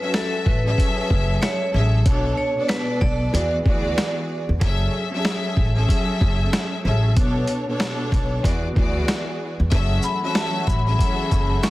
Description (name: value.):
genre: hip hop, boom-bap hip-hop.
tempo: 94 BPM.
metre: 4/4.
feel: swing 61% on 16ths.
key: unclear.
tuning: A4 = 440 Hz.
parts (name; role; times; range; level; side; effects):
vibraphone with hard mallets; melody; 0.0-4.1, 10.0-11.7 s; A4 to C#6; -27 LUFS; equal; digital delay.
warm studio string section; accompaniment; 0.0-11.7 s; B2 to E5; -24 LUFS; equal; none.
boom bap sampler-style drum kit; drums; 0.1-11.7 s; hi-hat, kick drum, shaker, snare drum; -22 LUFS; equal; none.
upright bass; bass; 0.5-11.6 s; F#1 to E2; -22 LUFS; equal; none.
warm studio string section; sustained chords; 9.7-11.7 s; E3 to F#4; -31 LUFS; equal; none.
room: studio ambience.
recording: dense, heavily limited modern master, vinyl crackle.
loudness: -18 LUFS.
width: side -18 dB against mid.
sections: 0.0-9.7 A section; 9.7-11.7 B section.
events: none.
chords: 0.0 F#m9; 2.1 Bm9; 3.3 E7; 4.6 F#m9; 7.2 Bm9; 8.4 E7; 9.7 F#m9.